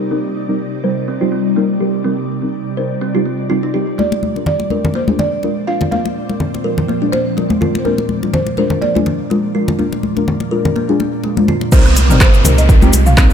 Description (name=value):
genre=afro house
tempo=124 BPM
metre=4/4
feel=swing 55% on 16ths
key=C minor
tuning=A4 = 439 Hz
part: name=ethereal airy pad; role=sustained chords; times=0.0-13.3 s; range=Bb2 to D5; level=-22 LUFS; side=left 1 dB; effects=ensemble chorus, built-in reverb, phaser, sidechain pumping
part: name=deep mellow chord stab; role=stabs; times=0.0-13.3 s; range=G3 to C5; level=-20 LUFS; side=left 2 dB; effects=chorus, sidechain pumping, tape echo
part: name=kalimba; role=arpeggios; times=0.1-13.3 s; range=Ab3 to C5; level=-21 LUFS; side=right 2 dB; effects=vintage 12-bit sampler grit, sidechain pumping, low-pass filter, tape echo
part: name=buzzing marimba with medium mallets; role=melody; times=4.0-13.3 s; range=Bb4 to F5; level=-21 LUFS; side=right 2 dB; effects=tape echo
part: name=congas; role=percussion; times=4.0-13.3 s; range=none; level=-19 LUFS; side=left 3 dB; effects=none
part: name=warm sub bass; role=bass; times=11.7-13.3 s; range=G1 to C2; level=-12 LUFS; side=right 1 dB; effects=sidechain pumping
part: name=deep house drum kit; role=drums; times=11.7-13.3 s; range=crash cymbal, handclaps, hi-hat, rim click, toms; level=-17 LUFS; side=equal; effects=none
part: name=electronic kick drum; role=drums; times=11.7-13.3 s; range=none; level=-9 LUFS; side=equal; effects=overdrive
part: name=cabasa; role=percussion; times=11.7-13.3 s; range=none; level=-23 LUFS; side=left 4 dB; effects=none
part: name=downlifter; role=sound effects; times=11.7-13.3 s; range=none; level=-19 LUFS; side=right 2 dB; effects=none
room=light reverb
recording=none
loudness=-13 LUFS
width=side -8 dB against mid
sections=0.0-11.7 A section; 11.7-13.3 B section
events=filter sweep on kalimba 0.0-11.7; drop 11.7-13.3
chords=0.0 Cm7; 4.0 Bb7; 11.7 Cm7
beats=| 0.11 0.60 1.08 1.56 | 2.05 2.53 3.02 3.50 | 3.98 4.47 4.95 5.43 | 5.92 6.40 6.89 7.37 | 7.86 8.34 8.82 9.31 | 9.79 10.27 10.76 11.24 | 11.73 12.21 12.69 13.18